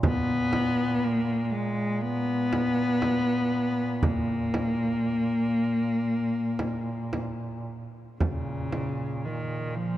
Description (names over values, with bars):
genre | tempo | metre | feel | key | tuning
caucasian folk, Caucasian lament | 55-61 BPM | 4/4 | rubato | Bb phrygian | A4 = 440 Hz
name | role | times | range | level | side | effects
warm duduk | drone | 0.0-10.0 s | Bb2 | -33 LUFS | right 3 dB | none
frame drum | percussion | 0.0-9.0 s | none | -31 LUFS | right 1 dB | none
warm cello | melody | 0.1-10.0 s | Db3 to Cb4 | -26 LUFS | left 1 dB | none
room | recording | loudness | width
moderate church reverb, RT60 3.7 s | dark, warm production | -25 LUFS | side -13 dB against mid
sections
0.0-8.2 A section; 8.2-10.0 B section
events
none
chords
none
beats
| 0.04 1.03 2.03 3.03 | 4.03 5.04 6.07 7.14 | 8.21 9.25